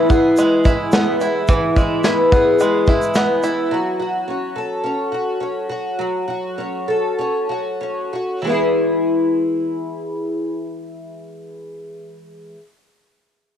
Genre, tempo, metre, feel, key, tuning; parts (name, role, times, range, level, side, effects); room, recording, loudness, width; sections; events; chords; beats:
acoustic pop; 92-108 BPM; 4/4; straight; E major; A4 = 440 Hz
picked twelve-string acoustic guitar; accompaniment; 0.0-12.6 s; E3 to A4; -18 LUFS; left 1 dB; double-tracked left and right, cassette tape
bluegrass banjo; arpeggios; 0.0-3.8 s; E3 to E4; -21 LUFS; right 2 dB; cassette tape, analog delay
soft brush drum kit; drums; 0.1-3.6 s; kick drum, shaker, snare drum; -18 LUFS; equal; cassette tape
moderate spring reverb, RT60 2.3 s; home recording on cassette; -16 LUFS; side -9 dB against mid
0.0-8.4 A section; 8.4-11.1 B section
slowing down 3.7-8.4
0.0 E; 3.7 F#m; 8.4 E
0.37 0.93 | 1.49 2.04 2.60 3.15 | 3.71 4.26 4.83 5.40 | 5.98 6.57 7.17 7.80 | 8.44 9.10 9.75 10.41